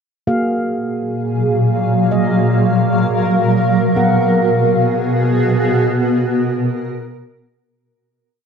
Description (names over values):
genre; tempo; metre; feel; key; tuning
hip hop, atmospheric cloud-rap; free time; none; none; F# major; A4 = 440 Hz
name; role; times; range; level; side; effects
granular cloud pad; sustained chords; 0.9-7.6 s; A#2 to E#5; -14 LUFS; equal; built-in reverb
handpan; texture; 0.3-7.6 s; A#3 to F#5; -22 LUFS; equal; none
room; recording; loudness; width
moderate huge ambient reverb, RT60 4.0 s; dark, warm production; -13 LUFS; side -6 dB against mid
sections
0.3-7.7 breakdown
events
fade-out 5.8-7.7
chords
0.3 F#maj9; 4.0 G#m9